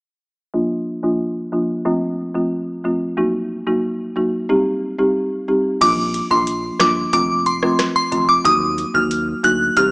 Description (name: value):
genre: dancehall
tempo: 91 BPM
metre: 4/4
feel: straight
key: Bb major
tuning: A4 = 440 Hz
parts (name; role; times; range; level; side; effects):
- folk marimba with medium mallets; accompaniment; 0.5-9.9 s; F3 to G4; -19 LUFS; equal; low-pass filter
- glassy synth bell; melody; 5.8-9.9 s; C6 to Gb6; -16 LUFS; equal; chorus
- sub bass with octave; bass; 5.8-9.9 s; F1 to Eb2; -31 LUFS; equal; none
- booming analog drum machine; drums; 5.8-9.9 s; crash cymbal, hi-hat, kick drum, rim click, snare drum; -25 LUFS; equal; none
room: light reverb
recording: dry, gritty hardware recording, transformer saturation, small speaker sound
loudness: -16 LUFS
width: side -34 dB against mid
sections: 0.5-5.8 A section; 5.8-9.9 B section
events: filter sweep on marimba 0.5-5.8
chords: 0.5 Bb; 1.9 F; 3.2 Ebm; 4.5 Cm; 5.8 Bb; 7.1 F; 8.5 Ebm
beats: | 0.54 1.20 1.86 2.52 | 3.18 3.84 4.50 5.15 | 5.81 6.47 7.13 7.79 | 8.45 9.11 9.77